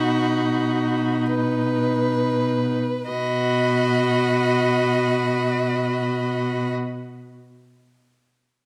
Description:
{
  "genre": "classical, slow romantic movement for string quartet",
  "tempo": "free time",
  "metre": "none",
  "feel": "none",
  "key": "B major",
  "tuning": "A4 = 441 Hz",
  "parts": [
    { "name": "warm violin", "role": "melody", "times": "0.0-6.7 s", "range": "B5", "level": "-31 LUFS", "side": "equal", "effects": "none" },
    { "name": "warm violin", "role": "second line", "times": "0.0-6.7 s", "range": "F#4 to D#5", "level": "-28 LUFS", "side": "equal", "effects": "none" },
    { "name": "clear viola", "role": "accompaniment", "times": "0.0-6.7 s", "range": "D#4 to F#4", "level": "-27 LUFS", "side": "equal", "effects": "none" },
    { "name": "rich cello", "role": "bass", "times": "0.0-6.7 s", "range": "B2", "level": "-26 LUFS", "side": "equal", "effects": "none" }
  ],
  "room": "wet recital hall reverb, RT60 1.6 s",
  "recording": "none",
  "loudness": "-22 LUFS",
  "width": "mono",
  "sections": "0.0-3.1 A section; 3.1-8.7 B section",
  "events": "slowing down 0.0-3.1",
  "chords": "0.0 B"
}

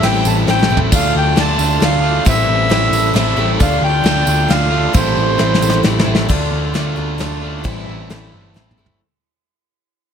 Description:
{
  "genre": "folk rock and heartland rock",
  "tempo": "134 BPM",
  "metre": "3/4",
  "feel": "straight",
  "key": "D minor",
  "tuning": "A4 = 440 Hz",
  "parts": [
    { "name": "accordion", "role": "melody", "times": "0.0-5.8 s", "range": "C5 to A5", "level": "-18 LUFS", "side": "equal", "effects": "none" },
    { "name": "picked twelve-string acoustic guitar", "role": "accompaniment", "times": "0.0-9.0 s", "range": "A2 to A4", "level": "-24 LUFS", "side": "left 8 dB", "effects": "none" },
    { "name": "mellow tonewheel organ", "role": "sustained chords", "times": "0.0-6.3 s", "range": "D4 to D5", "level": "-29 LUFS", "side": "right 3 dB", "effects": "none" },
    { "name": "crunchy overdriven guitar", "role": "riff", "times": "0.0-9.0 s", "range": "A2 to F4", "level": "-20 LUFS", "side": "right 1 dB", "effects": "none" },
    { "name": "hollow-body short-scale picked electric bass", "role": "bass", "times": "0.0-9.0 s", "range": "G1 to D2", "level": "-19 LUFS", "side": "equal", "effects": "none" },
    { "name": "soft brush drum kit", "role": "drums", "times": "0.0-9.0 s", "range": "crash cymbal, kick drum, ride cymbal, snare drum, splash cymbal, toms", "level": "-18 LUFS", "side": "equal", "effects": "none" },
    { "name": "tambourine", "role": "percussion", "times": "0.0-5.9 s", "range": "none", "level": "-29 LUFS", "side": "right 9 dB", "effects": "none" }
  ],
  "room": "small room ambience",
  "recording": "none",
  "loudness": "-12 LUFS",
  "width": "side -7 dB against mid",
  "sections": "0.0-6.3 A section; 6.3-9.0 B section",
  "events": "drum fill 0.5-0.9, 5.4-6.3, 8.6-9.0; fade-out 6.3-9.0",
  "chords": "0.0 Am7; 0.9 Dm; 2.3 Am7; 3.6 Dm; 4.9 Am7; 6.3 Dm; 7.6 Am7"
}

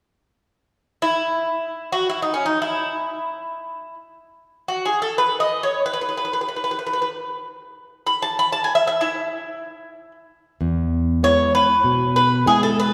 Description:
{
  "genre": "greek folk",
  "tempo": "free time",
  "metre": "none",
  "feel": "none",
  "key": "E major",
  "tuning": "A4 = 442 Hz",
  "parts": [
    { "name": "Greek bouzouki", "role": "melody", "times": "1.0-12.9 s", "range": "C#4 to B5", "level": "-22 LUFS", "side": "equal", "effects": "none" },
    { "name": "nylon-string guitar", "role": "accompaniment", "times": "10.6-12.9 s", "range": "E2 to E4", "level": "-22 LUFS", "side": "equal", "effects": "none" }
  ],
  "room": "wet concert hall reverb, RT60 2.1 s",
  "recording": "recorded in a church or concert hall",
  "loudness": "-21 LUFS",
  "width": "mono",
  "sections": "0.7-10.6 A section; 10.6-12.9 B section",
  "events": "none",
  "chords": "0.7 N.C.; 10.6 E"
}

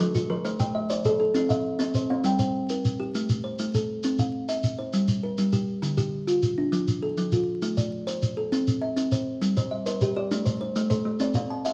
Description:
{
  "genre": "southern african traditional, mbira-style interlocking cycle",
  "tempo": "134 BPM (dotted quarters)",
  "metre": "12/8",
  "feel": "straight",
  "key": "G equiheptatonic",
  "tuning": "A4 = 440 Hz",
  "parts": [
    { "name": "kalimba", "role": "arpeggios", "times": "0.0-11.7 s", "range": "D3 to G5", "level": "-29 LUFS", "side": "equal", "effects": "none" },
    { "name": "kalimba", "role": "arpeggios", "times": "0.0-2.5, 9.6-11.7 s", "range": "F3+29c to A5-29c", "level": "-30 LUFS", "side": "equal", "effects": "none" },
    { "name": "shekere", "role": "percussion", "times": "0.0-11.7 s", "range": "none", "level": "-32 LUFS", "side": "equal", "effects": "none" }
  ],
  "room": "moderate large studio reverb, RT60 1.2 s",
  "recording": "vinyl crackle, nothing above 10.9 kHz, faint mains hum",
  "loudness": "-26 LUFS",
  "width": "mono",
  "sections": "0.0-2.2 A section; 2.2-11.7 A section",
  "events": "none",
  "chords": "0.5 Am; 1.3 C; 2.2 Gm; 3.1 Am; 4.0 C; 4.9 Gm; 5.8 Dm; 6.7 F; 7.6 Am; 8.5 C; 9.4 Gm; 10.3 Am; 11.2 C"
}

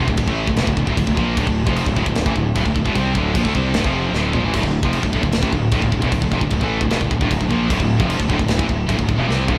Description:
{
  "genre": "heavy metal",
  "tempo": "151 BPM",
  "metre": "4/4",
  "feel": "straight",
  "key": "D minor",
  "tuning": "A4 = 440 Hz",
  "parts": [
    { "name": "distorted electric guitar", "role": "riff", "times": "0.0-9.6 s", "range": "D2 to C4", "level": "-27 LUFS", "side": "equal", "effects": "overdrive" },
    { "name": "heavy high-gain guitar", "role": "riff", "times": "0.0-9.6 s", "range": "D2 to C4", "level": "-25 LUFS", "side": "equal", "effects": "distortion" },
    { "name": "scooped high-gain guitar", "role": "riff", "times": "0.0-9.6 s", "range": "D2 to C4", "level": "-28 LUFS", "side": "equal", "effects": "distortion" },
    { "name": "fuzz fingered electric bass", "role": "bass", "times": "0.0-9.6 s", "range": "D1 to D2", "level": "-24 LUFS", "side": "equal", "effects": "overdrive" },
    { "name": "tight metal drum kit", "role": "drums", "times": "0.1-9.6 s", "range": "crash cymbal, kick drum, snare drum, splash cymbal, toms", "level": "-25 LUFS", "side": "equal", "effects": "none" }
  ],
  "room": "light reverb",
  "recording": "band playing live in one room",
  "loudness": "-19 LUFS",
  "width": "mono",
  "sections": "0.0-9.6 A section",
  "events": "drum fill 4.1-4.5, 9.3",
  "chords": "0.0 Dm"
}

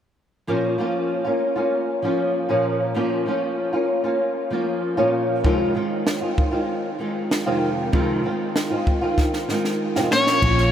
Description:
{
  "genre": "acoustic pop",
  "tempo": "96 BPM",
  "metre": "4/4",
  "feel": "straight",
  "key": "Bb minor",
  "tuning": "A4 = 440 Hz",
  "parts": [
    { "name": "flamenco guitar", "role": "accompaniment", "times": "0.5-10.7 s", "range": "F2 to F4", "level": "-20 LUFS", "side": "equal", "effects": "ensemble chorus" },
    { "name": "compact cocktail drum kit", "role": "drums", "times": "5.4-10.7 s", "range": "crash cymbal, kick drum, snare drum", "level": "-24 LUFS", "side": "equal", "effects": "none" },
    { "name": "overdriven slide guitar", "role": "melody", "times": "10.1-10.7 s", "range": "Db5", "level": "-18 LUFS", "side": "left 2 dB", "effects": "none" },
    { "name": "vintage muted fingered electric bass", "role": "bass", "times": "10.4-10.7 s", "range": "Bb1", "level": "-19 LUFS", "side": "equal", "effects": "none" }
  ],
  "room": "moderate huge ambient reverb, RT60 8.9 s",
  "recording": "dreamy mix soaked in reverb",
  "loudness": "-19 LUFS",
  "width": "side -9 dB against mid",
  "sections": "0.5-10.4 A section",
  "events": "drum fill 9.2-10.4",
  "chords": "0.5 Bbm; 5.4 Fm7; 10.1 Bbm"
}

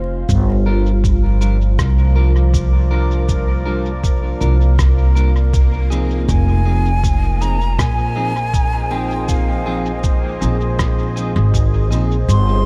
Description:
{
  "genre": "ambient dub",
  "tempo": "80 BPM",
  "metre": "4/4",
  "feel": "straight",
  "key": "F dorian",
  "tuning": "A4 = 440 Hz",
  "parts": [
    { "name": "deep dark ambient pad", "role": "sustained chords", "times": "0.0-12.7 s", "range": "F3 to Ab5", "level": "-29 LUFS", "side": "equal", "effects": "chorus, built-in reverb" },
    { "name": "upright bass", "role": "bass", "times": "0.0-12.7 s", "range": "F1 to C2", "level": "-18 LUFS", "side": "equal", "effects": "tube saturation" },
    { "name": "electronic kick drum", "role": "drums", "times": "0.3-11.7 s", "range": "none", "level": "-21 LUFS", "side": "equal", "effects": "none" },
    { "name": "electronic shaker and rim click", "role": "drums", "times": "0.3-12.4 s", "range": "none", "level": "-32 LUFS", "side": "equal", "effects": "dub echo" },
    { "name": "backwards swelling texture", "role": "texture", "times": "2.3-12.3 s", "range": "Bb3 to Bb4", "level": "-35 LUFS", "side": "equal", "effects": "built-in reverb" },
    { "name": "clean electric guitar", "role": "stabs", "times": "0.7-12.2 s", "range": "F3 to Bb4", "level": "-28 LUFS", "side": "equal", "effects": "dub echo" },
    { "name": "breathy silver concert flute", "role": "melody", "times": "6.3-12.7 s", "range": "F5 to C6", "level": "-26 LUFS", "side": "equal", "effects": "dub echo" }
  ],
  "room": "digital ambience",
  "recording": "vinyl crackle",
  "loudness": "-16 LUFS",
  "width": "mono",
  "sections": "0.0-12.3 A section",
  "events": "none",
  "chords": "0.3 Gm7; 6.3 Fm7"
}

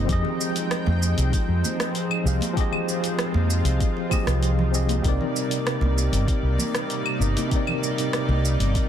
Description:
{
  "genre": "sunset chillout",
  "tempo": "97 BPM",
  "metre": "4/4",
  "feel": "straight",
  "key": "unclear",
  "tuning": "A4 = 437 Hz",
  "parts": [
    { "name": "tine electric piano", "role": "accompaniment", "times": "0.0-8.9 s", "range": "C3 to F5", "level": "-27 LUFS", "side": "moving between left 4 dB and right 3 dB", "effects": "overdrive, fast stereo tremolo, auto-pan, tape echo" },
    { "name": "lush unison pad", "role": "sustained chords", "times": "0.0-8.9 s", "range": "C3 to G5", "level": "-29 LUFS", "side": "equal", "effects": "chorus" },
    { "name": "woody fretless electric bass", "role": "bass", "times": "0.0-8.7 s", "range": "G1 to F2", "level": "-22 LUFS", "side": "equal", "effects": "none" },
    { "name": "deep house drum kit", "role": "drums", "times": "0.1-8.9 s", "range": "claves, hi-hat, rim click, shaker", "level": "-29 LUFS", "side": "equal", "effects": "overdrive" },
    { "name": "electronic kick drum", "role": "drums", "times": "0.1-8.9 s", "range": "none", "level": "-24 LUFS", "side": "equal", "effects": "none" },
    { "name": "congas and bongos", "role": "percussion", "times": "0.2-8.4 s", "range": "none", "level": "-34 LUFS", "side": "right 5 dB", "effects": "none" }
  ],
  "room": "light reverb",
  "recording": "dense, heavily limited modern master",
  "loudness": "-21 LUFS",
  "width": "side -9 dB against mid",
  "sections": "0.0-8.9 A section",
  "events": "none",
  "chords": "0.1 Fm9; 5.0 Cm9"
}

